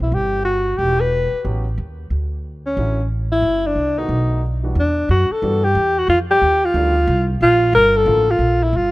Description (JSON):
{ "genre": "jazz, small-group swing and bop", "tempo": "181 BPM", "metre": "4/4", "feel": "swing 63% on 8ths", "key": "unclear", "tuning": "A4 = 440 Hz", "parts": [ { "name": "breathy alto saxophone", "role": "melody", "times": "0.0-8.9 s", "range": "C#4 to B4", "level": "-16 LUFS", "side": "left 1 dB", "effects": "none" }, { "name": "warm baby grand piano", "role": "accompaniment", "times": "0.0-8.3 s", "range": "D3 to G4", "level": "-29 LUFS", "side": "right 1 dB", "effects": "none" }, { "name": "upright bass", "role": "bass", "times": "0.0-8.9 s", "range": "E1 to G2", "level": "-20 LUFS", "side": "equal", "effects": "none" } ], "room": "small room ambience", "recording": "rough home demo mix", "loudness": "-15 LUFS", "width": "side -18 dB against mid", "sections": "0.0-4.8 A section; 4.8-8.9 B section", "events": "none", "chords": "0.0 Cmaj7; 0.8 E5; 1.4 A13; 2.1 Dmaj9; 3.4 F#dim; 4.1 B7; 4.8 Em9; 6.1 F13; 7.4 Bbmaj7" }